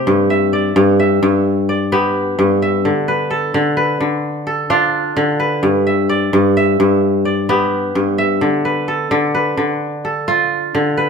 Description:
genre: west african traditional.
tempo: 86 BPM (dotted quarters).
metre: 12/8.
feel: straight.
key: unclear.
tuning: A4 = 442 Hz.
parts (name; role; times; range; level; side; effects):
kora; solo; 0.0-11.1 s; G2 to E5; -14 LUFS; equal; none.
room: light reverb.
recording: close, detailed microphones.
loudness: -13 LUFS.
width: side -6 dB against mid.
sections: 0.1-11.1 A section.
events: none.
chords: 0.1 G; 2.8 Dm; 5.6 G; 8.4 Dm.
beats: | 0.06 0.76 1.45 2.15 | 2.84 3.54 4.23 4.93 | 5.62 6.32 7.02 7.71 | 8.41 9.11 9.81 10.51.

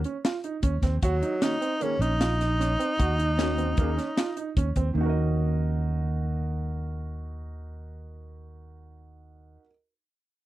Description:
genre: progressive instrumental, band music in an uneven meter.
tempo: 152 BPM.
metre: 5/4.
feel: straight.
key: Eb minor.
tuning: A4 = 440 Hz.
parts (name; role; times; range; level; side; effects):
fretless electric bass; bass; 0.0-9.6 s; Bb1 to Eb2; -28 LUFS; equal; none.
tight funk drum kit; drums; 0.0-4.9 s; hi-hat, kick drum, snare drum; -27 LUFS; equal; none.
clear grand piano; arpeggios; 0.1-9.7 s; Bb3 to Eb5; -33 LUFS; right 6 dB; none.
clear tenor saxophone; melody; 1.0-4.6 s; Gb3 to Eb4; -28 LUFS; equal; none.
hollow-body jazz guitar; accompaniment; 1.4-9.6 s; Eb3 to Ab4; -33 LUFS; equal; double-tracked left and right.
room: little or no reverb.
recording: dry, close 1970s-style studio recording.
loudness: -24 LUFS.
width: side -15 dB against mid.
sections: 0.0-5.0 A section; 5.0-8.9 B section.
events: none.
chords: 0.0 Ebm7.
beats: 0.24 0.63 | 1.03 1.42 1.81 2.21 2.60 | 3.00 3.39 3.78 4.18 4.57 | 4.96 5.36 5.75 6.15 6.54 | 6.93 7.33 7.72 8.12 8.51.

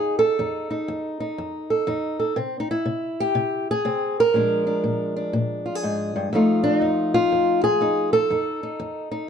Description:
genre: acoustic country blues, solo or duo.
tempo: 121 BPM.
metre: 4/4.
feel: swing 65% on 8ths.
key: F mixolydian.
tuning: A4 = 440 Hz.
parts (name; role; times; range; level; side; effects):
fingerpicked old ladder-braced acoustic guitar; solo; 0.0-9.3 s; F2 to Bb4; -20 LUFS; equal; none.
room: moderate small room reverb, RT60 0.5 s.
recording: dark, warm production.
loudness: -20 LUFS.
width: side -7 dB against mid.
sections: 0.0-9.3 A section.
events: none.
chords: 0.0 F7; 2.4 N.C.; 4.3 Bb7; 6.3 F7.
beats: | 0.39 0.88 1.38 1.87 | 2.37 2.86 3.36 3.85 | 4.35 4.84 5.34 5.83 | 6.33 6.82 7.32 7.81 | 8.30 8.80.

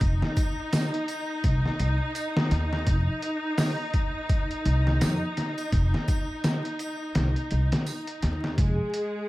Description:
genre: trip hop.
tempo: 84 BPM.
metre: 4/4.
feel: swing 59% on 16ths.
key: F minor.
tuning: A4 = 440 Hz.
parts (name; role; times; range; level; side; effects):
warm studio string section; sustained chords; 0.0-9.3 s; Ab3 to Ab4; -31 LUFS; equal; none.
upright bass; bass; 0.0-8.8 s; F1 to F2; -25 LUFS; equal; tube saturation.
trip hop sampler-style drum kit; drums; 0.0-9.1 s; hi-hat, kick drum, snare drum; -26 LUFS; equal; overdrive, studio reverb.
triangle and tambourine; percussion; 0.4-8.0 s; none; -44 LUFS; right 3 dB; none.
room: light reverb, small room reverb.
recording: dark, warm production, vinyl crackle.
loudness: -24 LUFS.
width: side -18 dB against mid.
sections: 0.0-9.3 A section.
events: none.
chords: 0.0 Fm7 (rootless).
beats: | 0.01 0.72 1.44 2.15 | 2.87 3.58 4.30 5.01 | 5.72 6.44 7.15 7.87 | 8.58.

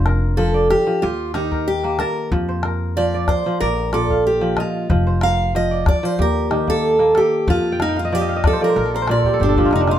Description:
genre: west african traditional, West African string and xylophone music.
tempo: 93 BPM.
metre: 4/4.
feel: straight.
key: F mixolydian.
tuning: A4 = 440 Hz.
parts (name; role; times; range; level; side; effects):
kora; arpeggios; 0.0-10.0 s; Bb2 to A5; -21 LUFS; equal; none.
upright bass; bass; 0.0-10.0 s; F1 to F2; -22 LUFS; equal; none.
calabash; percussion; 0.1-10.0 s; none; -22 LUFS; left 2 dB; none.
picked steel-string acoustic guitar; melody; 0.4-10.0 s; D4 to F5; -19 LUFS; right 1 dB; none.
room: light reverb.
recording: minimal, uncompressed stereo recording.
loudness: -16 LUFS.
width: side -10 dB against mid.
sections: 0.0-10.0 A section.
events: steel-string acoustic guitar solo 0.0-10.0; kora fill 7.7-10.0; drum fill 9.2-10.0.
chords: 0.0 F5; 1.0 Eb; 2.3 F; 3.6 Bb; 4.9 F5; 6.2 Eb; 7.5 F.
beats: 0.38 1.03 1.67 | 2.32 2.96 3.61 4.25 | 4.90 5.54 6.19 6.83 | 7.47 8.12 8.76 9.40.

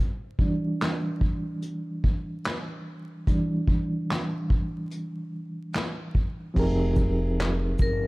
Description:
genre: lo-fi hip hop.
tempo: 73 BPM.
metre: 4/4.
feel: swing 65% on 16ths.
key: unclear.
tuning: A4 = 438 Hz.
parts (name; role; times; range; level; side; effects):
reed electric piano; accompaniment; 0.4-8.1 s; E3 to Bb4; -29 LUFS; right 1 dB; overdrive, fast tremolo, cassette tape, low-pass filter.
vintage brush drum kit; drums; 0.4-8.0 s; crash cymbal, handclaps, hi-hat, kick drum, shaker, snare drum; -26 LUFS; equal; none.
upright bass; bass; 6.6-8.1 s; F1 to G1; -27 LUFS; equal; none.
vibraphone with hard mallets; melody; 7.8-8.1 s; Bb4; -28 LUFS; left 4 dB; none.
room: small room ambience.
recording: dark, warm production, vinyl crackle.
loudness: -25 LUFS.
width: side -22 dB against mid.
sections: 0.0-6.6 A section; 6.6-8.1 B section.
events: reed electric piano solo 0.0-6.6; filter sweep on reed electric piano 0.0-6.6.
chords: 0.0 Em7; 6.6 Fm11.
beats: 0.81 1.63 2.45 | 3.27 4.09 4.92 5.74 | 6.56 7.38.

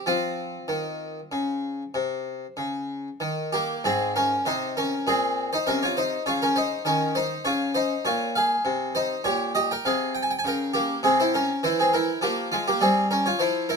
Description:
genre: classical, baroque-style suite movement for harpsichord.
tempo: 66 BPM (dotted quarters).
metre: 12/8.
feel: uneven beats, rubato.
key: unclear.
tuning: A4 = 441 Hz.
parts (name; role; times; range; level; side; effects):
harpsichord; solo; 0.0-13.8 s; Ab2 to Ab5; -22 LUFS; equal; none.
room: light reverb.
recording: close, detailed microphones.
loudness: -22 LUFS.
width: side -5 dB against mid.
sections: 0.0-3.8 A section; 3.8-13.8 A section.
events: none.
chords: 0.1 F5; 3.8 Ab; 7.4 Db; 9.2 Gdim/Bb; 11.0 C7.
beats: | 0.06 1.00 1.94 2.88 | 3.84 4.76 5.66 6.55 | 7.44 8.35 9.25 10.15 | 11.03 11.92 12.80 13.67.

